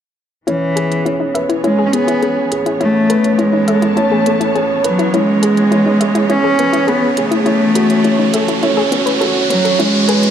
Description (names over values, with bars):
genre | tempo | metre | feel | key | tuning
piano and strings electronica | 103 BPM | 4/4 | straight | E major | A4 = 440 Hz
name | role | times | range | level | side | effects
rich cello | melody | 0.5-10.3 s | E3 to C#4 | -15 LUFS | equal | none
warm studio string section | sustained chords | 0.5-10.3 s | E3 to A5 | -21 LUFS | right 3 dB | none
soft round pluck | arpeggios | 0.5-10.2 s | B3 to E5 | -21 LUFS | left 4 dB | chorus, tape echo
dark upright piano | riff | 0.5-10.3 s | C#4 to B4 | -18 LUFS | right 1 dB | none
warm sub bass | bass | 0.5-10.3 s | E1 to A1 | -36 LUFS | left 1 dB | none
electronic hi-hat | drums | 0.5-10.3 s | none | -26 LUFS | right 3 dB | high-pass filter on hats
riser | sound effects | 2.6-10.3 s | none | -24 LUFS | right 2 dB | none
room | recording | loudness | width
moderate echo chamber reverb, RT60 2.1 s | dark, warm production, high-pass filter | -12 LUFS | side -9 dB against mid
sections
0.5-10.3 A section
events
build-up 0.5-10.3; filter sweep 0.5-10.3; riser 2.6-10.3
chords
0.5 E6; 2.8 Aadd9; 5.1 E6; 7.5 F#m7; 9.8 E6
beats
| 0.47 1.06 1.64 2.22 | 2.81 3.39 3.97 4.55 | 5.13 5.72 6.30 6.88 | 7.46 8.05 8.63 9.21 | 9.79